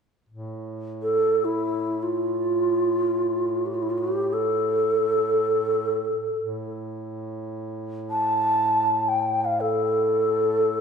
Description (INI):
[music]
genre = arabic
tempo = free time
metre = none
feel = none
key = unclear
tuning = A4 = 440 Hz
[part]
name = warm duduk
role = drone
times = 0.3-10.8 s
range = A2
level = -33 LUFS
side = right 1 dB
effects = none
[part]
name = breathy mellow low ney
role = melody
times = 1.0-10.8 s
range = E4 to A5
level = -21 LUFS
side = equal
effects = none
[sound]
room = wet recital hall reverb, RT60 1.7 s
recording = recorded in a church or concert hall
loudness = -21 LUFS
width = side -6 dB against mid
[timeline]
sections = 0.3-10.8 A section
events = none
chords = none